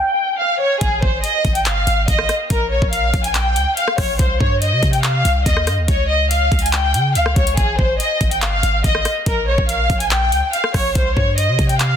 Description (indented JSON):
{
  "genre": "hip hop, trap",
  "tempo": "142 BPM",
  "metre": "4/4",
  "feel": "half-time",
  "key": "unclear",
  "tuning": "A4 = 440 Hz",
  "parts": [
    { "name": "warm studio violin section", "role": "melody", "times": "0.0-12.0 s", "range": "Ab4 to Ab5", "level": "-18 LUFS", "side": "left 1 dB", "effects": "low-pass filter, digital delay" },
    { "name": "warm 808-style bass", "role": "bass", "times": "0.8-12.0 s", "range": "G1 to Db3", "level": "-20 LUFS", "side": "equal", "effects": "none" },
    { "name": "trap drum kit", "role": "drums", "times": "0.8-11.9 s", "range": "handclaps, hi-hat, kick drum, rim click", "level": "-20 LUFS", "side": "equal", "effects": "none" }
  ],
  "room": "light reverb, digital ambience",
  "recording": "dense, heavily limited modern master",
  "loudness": "-14 LUFS",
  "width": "side -8 dB against mid",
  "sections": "0.0-12.0 A section",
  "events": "break 0.0-0.8",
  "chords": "0.0 Db; 0.8 Fm7; 2.5 Bbm; 4.2 Cm; 5.9 Db; 7.6 Fm7; 9.3 Bbm; 11.0 Cm",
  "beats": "0.39 | 0.81 1.24 1.66 2.08 | 2.50 2.93 3.35 3.77 | 4.19 4.62 5.04 5.46 | 5.88 6.31 6.73 7.15 | 7.57 8.00 8.42 8.84 | 9.26 9.69 10.11 10.53 | 10.95 11.38 11.80"
}